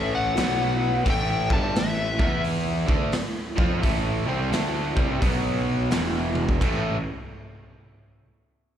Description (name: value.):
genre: blues rock power trio and southern rock.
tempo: 86 BPM.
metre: 4/4.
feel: swing 64% on 8ths.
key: unclear.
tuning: A4 = 440 Hz.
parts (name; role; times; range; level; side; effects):
overdriven slide guitar; melody; 0.0-2.4 s; E5 to A5; -28 LUFS; left 4 dB; slapback echo.
nasal lead guitar with a parked wah; second line; 0.0-2.4 s; A4 to E5; -38 LUFS; right 4 dB; overdrive, slapback echo.
overdriven semi-hollow guitar; riff; 0.0-7.0 s; E2 to F4; -26 LUFS; equal; spring reverb, slapback echo.
fuzz picked electric bass; bass; 0.0-7.0 s; E1 to F2; -28 LUFS; equal; overdrive.
raw garage drum kit; drums; 0.4-6.8 s; crash cymbal, hi-hat, kick drum, snare drum, toms; -26 LUFS; equal; none.
room: little or no reverb.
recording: live gig heard through the venue's PA, club ambience.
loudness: -21 LUFS.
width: side -10 dB against mid.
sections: 0.0-6.6 A section; 6.6-8.8 B section.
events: drum fill 6.3-6.6.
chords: 0.4 B5; 1.1 A5; 2.1 E5; 2.8 D5; 3.8 A5; 5.2 B5; 5.9 E5; 6.6 A5.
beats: 0.37 | 1.06 1.75 2.44 3.14 | 3.83 4.53 5.22 5.91 | 6.61.